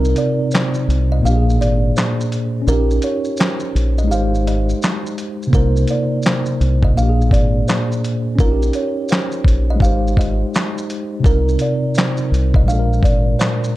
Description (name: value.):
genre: lo-fi hip hop.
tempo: 84 BPM.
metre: 4/4.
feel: swing 63% on 16ths.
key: C minor.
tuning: A4 = 440 Hz.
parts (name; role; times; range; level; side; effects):
kalimba; melody; 0.0-13.7 s; Bb4 to F5; -24 LUFS; right 3 dB; none.
mellow tine electric piano; accompaniment; 0.0-13.8 s; Bb2 to C5; -20 LUFS; equal; medium stereo tremolo, cassette tape.
deep dub fingered electric bass; bass; 0.0-13.3 s; Ab1 to C2; -17 LUFS; equal; none.
dusty soul sampler-style drum kit; drums; 0.0-13.7 s; handclaps, hi-hat, kick drum, shaker, snare drum; -18 LUFS; equal; none.
room: little or no reverb.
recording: dark, warm production.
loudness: -14 LUFS.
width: side -16 dB against mid.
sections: 0.0-13.8 A section.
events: break 0.0-5.5.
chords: 0.0 Cm7; 1.2 Bb7; 2.7 Eb7/Bb; 4.1 Abmaj7; 5.5 Cm7; 7.0 Bb7; 8.4 Eb7/Bb; 9.8 Abmaj7; 11.2 Cm7; 12.7 Bb7.